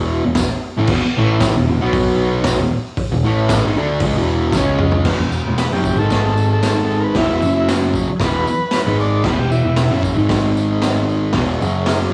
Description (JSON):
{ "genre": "garage rock duo or trio", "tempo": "115 BPM", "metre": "4/4", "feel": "straight", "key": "E major", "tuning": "A4 = 439 Hz", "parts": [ { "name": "fuzz guitar", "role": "riff", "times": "0.0-12.1 s", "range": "E2 to D4", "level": "-20 LUFS", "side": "equal", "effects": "distortion, cassette tape" }, { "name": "growling picked electric bass", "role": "bass", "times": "0.0-12.1 s", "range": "E1 to D2", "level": "-23 LUFS", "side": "equal", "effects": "overdrive" }, { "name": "raw garage drum kit", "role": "drums", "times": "0.3-12.0 s", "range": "crash cymbal, hi-hat, kick drum, snare drum, toms", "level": "-23 LUFS", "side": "equal", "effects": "cassette tape" }, { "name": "tambourine", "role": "percussion", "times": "0.4-12.0 s", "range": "none", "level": "-36 LUFS", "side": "equal", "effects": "none" }, { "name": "overdriven combo organ", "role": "melody", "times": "5.6-10.0 s", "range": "E4 to D5", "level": "-24 LUFS", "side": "equal", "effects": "cassette tape" } ], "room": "light reverb, small room ambience", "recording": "home recording on cassette", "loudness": "-17 LUFS", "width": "mono", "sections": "0.0-5.1 A section; 5.1-12.1 B section", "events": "drum fill 4.6-5.1", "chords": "0.0 E5; 1.8 B5; 2.6 E; 4.6 C#5; 5.1 E5; 6.0 G#5; 7.2 E5; 7.4 F#5; 8.1 E; 10.2 G#5; 11.4 E5; 11.6 F#5" }